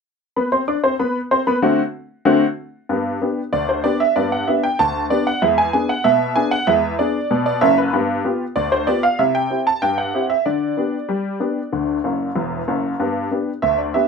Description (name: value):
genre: ragtime piano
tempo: 95 BPM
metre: 2/4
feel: straight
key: G major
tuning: A4 = 441 Hz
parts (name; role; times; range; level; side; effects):
- honky-tonk upright piano; solo; 0.4-14.1 s; E1 to D6; -16 LUFS; equal; none
room: moderate small room reverb, RT60 0.5 s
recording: minimal, uncompressed stereo recording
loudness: -17 LUFS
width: side -5 dB against mid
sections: 0.4-2.9 A section; 2.9-14.1 B section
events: honky-tonk piano fill 12.0-13.0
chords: 0.4 Bm; 1.6 D7; 2.9 G; 5.4 E7; 7.9 G7; 9.2 C; 10.5 G/D; 11.7 D; 13.0 G